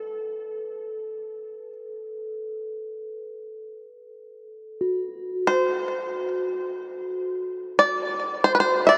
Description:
world meditative, free-time meditation music; free time; A dorian; A4 = 436 Hz
bluegrass banjo; melody; 0.0-9.0 s; A4 to E5; -22 LUFS; equal
bronze singing bowl; texture; 0.0-9.0 s; F#4 to B4; -33 LUFS; equal
wet huge ambient reverb, RT60 4.7 s; dark, warm production; -27 LUFS; mono
0.0-4.3 A section; 4.3-9.0 A section

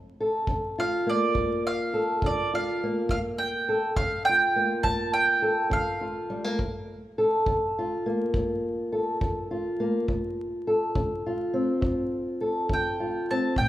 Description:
acoustic country blues, solo or duo; 69 BPM (dotted quarters); 12/8; straight; A4 = 440 Hz
fingerpicked old ladder-braced acoustic guitar; accompaniment; 0.0-13.7 s; D2 to A4; -26 LUFS; left 1 dB
kick drum; drums; 0.5-13.7 s; -32 LUFS; equal
mandolin; melody; 0.8-6.8, 12.7-13.7 s; D5 to A5; -26 LUFS; right 3 dB
wet recital hall reverb, RT60 1.8 s; recorded in a church or concert hall, vinyl crackle; -24 LUFS; side -14 dB against mid
0.0-13.7 A section
0.0 Gm9; 10.1 Dm7

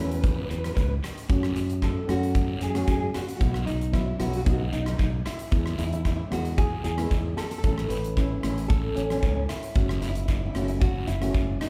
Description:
calypso; 113 BPM; 4/4; straight; A4 = 440 Hz
nylon-string guitar; melody; 0.0-11.7 s; C#4 to B4; -34 LUFS; equal
steel pan; accompaniment; 0.0-11.6 s; F#3 to F#4; -35 LUFS; equal
modern bright fingered electric bass; bass; 0.0-11.6 s; F#1 to F#2; -31 LUFS; equal
gated 80s drum kit; drums; 0.1-11.7 s; hi-hat, kick drum, rim click; -30 LUFS; equal
guiro; percussion; 0.2-11.7 s; -46 LUFS; equal
moderate large studio reverb, RT60 0.9 s; band playing live in one room; -26 LUFS; mono
0.0-11.7 A section
0.0 A/E; 1.3 F#m; 3.4 Bsus4; 4.5 B; 5.5 E; 7.6 A; 9.8 F#m7

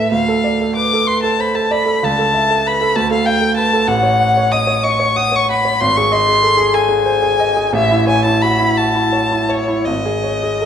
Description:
classical, romantic duo for violin and grand piano; 52-66 BPM (dotted quarters); 6/8; rubato; A4 = 442 Hz
warm violin; melody; 0.0-10.7 s; C#5 to D#6; -15 LUFS; left 2 dB
bright concert grand piano; accompaniment; 0.0-10.7 s; G#1 to F#5; -16 LUFS; right 2 dB
wet recital hall reverb, RT60 1.3 s; -12 LUFS; side -8 dB against mid
0.0-10.7 A section
0.1 Dm7; 2.0 A/C#; 3.0 Dm; 3.9 F#m/A; 5.8 G#; 7.7 A; 9.9 G#sus4

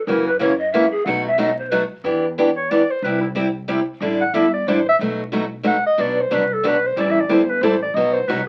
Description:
acoustic string swing (jazz manouche); 182 BPM; 3/4; swing 60% on 8ths; A4 = 440 Hz
breathy bright large pan pipes; second line; 0.0-1.8 s; G#4 to F#5; -22 LUFS; equal
picked steel-string acoustic guitar; accompaniment; 0.1-8.4 s; B2 to A4; -21 LUFS; equal
upright bass; bass; 0.1-8.5 s; G1 to F#2; -34 LUFS; equal
warm clarinet; melody; 2.6-8.5 s; E4 to F#5; -22 LUFS; equal
moderate studio ambience, RT60 0.5 s; very old 78 rpm record, vinyl crackle; -19 LUFS; mono
0.0-2.0 A section; 2.0-8.5 A section
pan flute solo 0.0-2.0; clarinet solo 2.0-8.5
0.1 F#7; 1.1 B7; 2.0 Em7; 3.0 C; 4.0 A7sus4; 5.0 B7; 6.0 Bm; 7.0 Am7; 8.0 B

